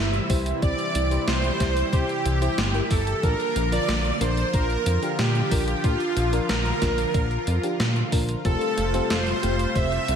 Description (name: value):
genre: synthwave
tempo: 92 BPM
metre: 4/4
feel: straight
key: unclear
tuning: A4 = 440 Hz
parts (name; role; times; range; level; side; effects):
- soft supersaw; melody; 0.0-10.2 s; F4 to E5; -28 LUFS; right 2 dB; tape echo
- string machine, violins; second line; 0.0-10.2 s; F4 to E5; -31 LUFS; equal; ensemble chorus
- warm analog pad; sustained chords; 0.0-10.2 s; C3 to F4; -30 LUFS; right 1 dB; chorus, sidechain pumping
- chorused synth bass; bass; 0.0-10.2 s; F1 to Bb2; -25 LUFS; equal; none
- gated 80s digital drum machine; drums; 0.1-10.2 s; hi-hat, snare drum; -29 LUFS; equal; gated reverb, gated reverb snare
- FM electric piano with soft pad layer; stabs; 0.3-9.9 s; A3 to C5; -31 LUFS; left 2 dB; chorus
- electronic kick drum; drums; 0.3-9.9 s; none; -24 LUFS; equal; none
room: light reverb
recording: none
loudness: -21 LUFS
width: side -8 dB against mid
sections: 0.0-10.2 A section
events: none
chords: 0.0 C; 3.2 Bb; 8.4 Fadd9